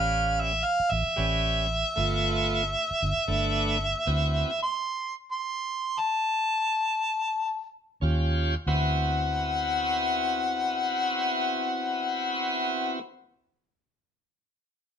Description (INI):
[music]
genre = straight-eighth soul blues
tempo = 91-114 BPM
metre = 4/4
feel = swing 56% on 16ths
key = D mixolydian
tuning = A4 = 440 Hz
[part]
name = clear harmonica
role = melody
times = 0.0-13.0 s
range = E5 to C6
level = -26 LUFS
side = left 1 dB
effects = overdrive
[part]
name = bright tonewheel organ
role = accompaniment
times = 0.0-4.5, 8.0-13.0 s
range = G3 to G4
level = -30 LUFS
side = right 2 dB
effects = slow rotary speaker, overdrive
[part]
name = vintage muted fingered electric bass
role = bass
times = 0.0-4.4, 8.0-13.0 s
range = G1 to Eb2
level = -28 LUFS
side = equal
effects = none
[sound]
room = light reverb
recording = band playing live in one room, nothing above 10.6 kHz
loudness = -24 LUFS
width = side -8 dB against mid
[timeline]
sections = 0.0-8.7 A section; 8.7-13.9 B section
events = slowing down 4.1-8.7; stop 4.1-8.0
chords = 0.0 A9; 2.0 G9; 4.1 D13; 8.0 Eb9; 8.7 D13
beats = 0.39 0.92 1.44 | 1.97 2.50 3.02 3.55 | 4.08 4.61 5.14 5.68 | 6.24 6.81 7.40 8.02 | 8.66 9.32 9.98 10.63 | 11.29 11.95 12.61